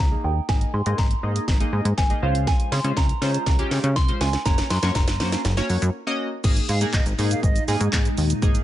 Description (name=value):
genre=dance-pop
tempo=121 BPM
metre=4/4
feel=straight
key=Ab major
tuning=A4 = 438 Hz
part: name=soft synth bell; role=melody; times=0.0-5.4 s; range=F5 to C6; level=-29 LUFS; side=right 3 dB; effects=chorus, phaser, low-pass filter, digital delay
part: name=plucky analog bass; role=bass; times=0.0-8.6 s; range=Gb1 to Db3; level=-23 LUFS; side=equal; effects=sidechain pumping
part: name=chorused retro synth keys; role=accompaniment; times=0.1-8.6 s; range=Ab3 to Eb5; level=-29 LUFS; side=equal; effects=sidechain pumping, low-pass filter
part: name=house drum kit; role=drums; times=0.5-8.6 s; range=crash cymbal, handclaps, hi-hat, kick drum, shaker, snare drum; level=-22 LUFS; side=equal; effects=none
part: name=glassy FM pad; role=sustained chords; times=6.9-8.6 s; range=Bb2 to Eb4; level=-30 LUFS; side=left 2 dB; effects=ensemble chorus, built-in reverb, sidechain pumping
part: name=silver concert flute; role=melody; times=6.7-7.8 s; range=Eb5 to Ab5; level=-32 LUFS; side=right 4 dB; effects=sidechain pumping, digital delay
room=little or no reverb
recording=nothing above 10.9 kHz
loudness=-19 LUFS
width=side -13 dB against mid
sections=0.0-6.4 A section; 6.4-8.6 B section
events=build-up 0.0-6.4; drum fill 0.0-5.9; filter sweep 0.0-6.4; break 5.9-6.4; drop 6.4-8.6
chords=0.0 Absus2; 2.2 Dbmaj7; 4.5 Gb; 6.4 Absus2